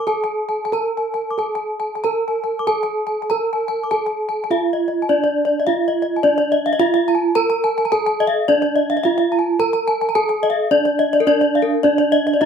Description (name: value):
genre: gamelan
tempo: 91-107 BPM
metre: 4/4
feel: straight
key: D pelog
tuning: A4 = 440 Hz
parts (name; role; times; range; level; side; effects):
- gamelan-type bronze metallophone; melody; 0.0-12.5 s; D4 to Bb4-40c; -19 LUFS; right 4 dB; none
- gamelan-type bronze metallophone; arpeggios; 0.0-12.5 s; Bb4-40c to D6; -19 LUFS; left 3 dB; none
room: wet studio reverb, RT60 0.6 s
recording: band playing live in one room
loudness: -16 LUFS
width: side -7 dB against mid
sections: 0.0-6.2 A section; 6.2-12.5 B section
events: none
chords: none